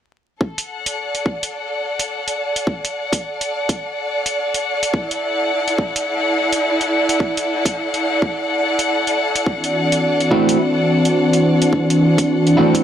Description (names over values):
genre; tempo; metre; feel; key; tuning
glitch hop; 106 BPM; 4/4; swing 60% on 16ths; unclear; A4 = 435 Hz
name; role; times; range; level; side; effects
electronic kick drum; drums; 0.4-12.8 s; none; -21 LUFS; equal; high-pass filter on kick, small room reverb
rich chamber string section; texture; 0.4-12.8 s; E4 to F#5; -19 LUFS; equal; sidechain pumping
electronic hi-hat; drums; 0.6-12.8 s; none; -23 LUFS; right 1 dB; small room reverb
warm analog pad; sustained chords; 9.5-12.8 s; E3 to F#4; -15 LUFS; left 1 dB; lush chorus, sidechain pumping
electric guitar at the edge of break-up; stabs; 10.3-12.8 s; A3 to F#4; -17 LUFS; right 2 dB; sidechain pumping, dub echo
room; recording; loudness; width
wet plate reverb, RT60 1.2 s; vinyl crackle; -16 LUFS; side -10 dB against mid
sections
0.4-12.8 A section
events
none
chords
0.4 D; 4.9 Esus2; 9.5 D9